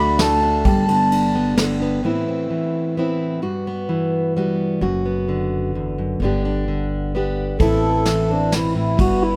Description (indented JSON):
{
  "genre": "acoustic folk duo or small band",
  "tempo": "130 BPM",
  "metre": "3/4",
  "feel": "straight",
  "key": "A dorian",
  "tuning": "A4 = 440 Hz",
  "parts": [
    { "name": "mellow accordion", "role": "melody", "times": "0.0-1.5, 7.6-9.4 s", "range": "D4 to B5", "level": "-22 LUFS", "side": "equal", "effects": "plate reverb" },
    { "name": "fingerpicked plugged-in steel-string acoustic guitar", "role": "accompaniment", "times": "0.0-9.4 s", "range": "E2 to G4", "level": "-23 LUFS", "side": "equal", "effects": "none" },
    { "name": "felt-muted upright piano", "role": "arpeggios", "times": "0.0-2.1 s", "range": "F#3 to A4", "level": "-24 LUFS", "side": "equal", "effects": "none" },
    { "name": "upright bass", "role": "bass", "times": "0.0-2.0, 4.8-9.4 s", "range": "F#1 to D2", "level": "-28 LUFS", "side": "equal", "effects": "none" },
    { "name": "soft brush drum kit", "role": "drums", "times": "0.2-1.7, 7.6-9.1 s", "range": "kick drum, ride cymbal, snare drum", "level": "-25 LUFS", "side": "equal", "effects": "none" }
  ],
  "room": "moderate small room reverb, RT60 0.6 s",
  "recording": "none",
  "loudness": "-20 LUFS",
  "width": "mono",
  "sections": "0.0-2.0 A section; 2.0-7.6 B section; 7.6-9.4 C section",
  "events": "none",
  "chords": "0.0 D; 0.6 Gadd9; 2.0 Amadd9; 3.4 Emadd9/G; 4.8 Bm/F#; 6.2 G; 7.6 Amadd9"
}